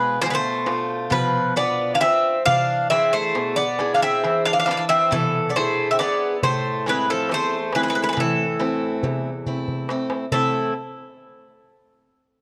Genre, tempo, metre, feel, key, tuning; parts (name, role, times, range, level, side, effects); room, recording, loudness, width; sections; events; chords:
greek folk, Greek bouzouki band; 137 BPM (eighths); 9/8; straight; A harmonic minor; A4 = 440 Hz
Greek bouzouki; melody; 0.0-10.7 s; A4 to F5; -23 LUFS; equal
Greek bouzouki; second line; 0.0-10.7 s; E3 to E4; -30 LUFS; equal
picked acoustic archtop guitar; accompaniment; 0.0-10.7 s; E2 to B4; -29 LUFS; equal
darbuka; percussion; 0.2-10.7 s; -31 LUFS; equal
moderate plate reverb, RT60 2.6 s; -21 LUFS; mono
0.0-10.3 A section; 10.3-12.4 B section
speeding up 0.0-12.4; drum fill 9.5-10.3
0.0 Bdim; 2.5 E7; 6.4 Am